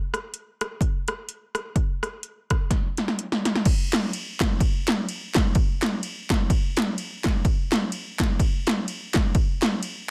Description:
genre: gospel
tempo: 126 BPM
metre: 4/4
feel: swing 58% on 8ths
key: none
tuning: none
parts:
  - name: 80s electronic pad drums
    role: drums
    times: 0.1-10.0 s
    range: crash cymbal, hi-hat, kick drum, ride cymbal, rim click, snare drum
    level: -25 LUFS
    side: equal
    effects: none
  - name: group handclap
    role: percussion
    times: 3.9-9.7 s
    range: none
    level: -33 LUFS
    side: equal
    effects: none
room: light reverb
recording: dense, heavily limited modern master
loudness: -25 LUFS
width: mono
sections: 0.0-3.7 A section; 3.7-10.1 B section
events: drum fill 2.7-3.7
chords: none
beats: 0.34 0.81 1.28 | 1.76 2.24 2.71 3.19 | 3.66 4.13 4.61 5.08 | 5.56 6.03 6.51 6.98 | 7.46 7.93 8.40 8.88 | 9.35 9.83

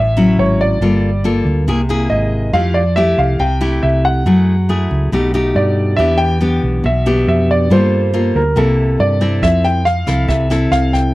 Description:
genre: bossa nova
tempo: 139 BPM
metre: 4/4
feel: straight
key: unclear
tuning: A4 = 440 Hz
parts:
  - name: warm concert grand piano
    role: melody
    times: 0.0-11.1 s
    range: A4 to G5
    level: -17 LUFS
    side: equal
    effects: none
  - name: nylon-string guitar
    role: accompaniment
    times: 0.0-11.1 s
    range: A2 to A4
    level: -16 LUFS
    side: left 2 dB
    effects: none
  - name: hollow-body short-scale fingered electric bass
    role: bass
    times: 0.0-11.1 s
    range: G1 to G2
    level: -16 LUFS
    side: right 1 dB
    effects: none
  - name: jazz brush drum kit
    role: drums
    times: 9.4-11.0 s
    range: kick drum, rim click, snare drum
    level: -24 LUFS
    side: right 1 dB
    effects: none
room: little or no reverb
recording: dry, close 1970s-style studio recording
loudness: -12 LUFS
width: side -18 dB against mid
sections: 0.0-11.1 A section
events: none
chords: 0.0 Dmaj9; 0.8 Gm9; 1.7 C7alt; 2.5 Fmaj9; 4.3 F#m9; 5.1 B7alt; 6.0 Em7; 7.7 Gm9; 8.6 C13; 9.4 Fmaj7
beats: 0.38 | 0.81 1.24 1.67 2.10 | 2.53 2.96 3.39 3.83 | 4.26 4.69 5.12 5.55 | 5.98 6.41 6.84 7.27 | 7.70 8.13 8.56 8.99 | 9.42 9.85 10.29 10.71

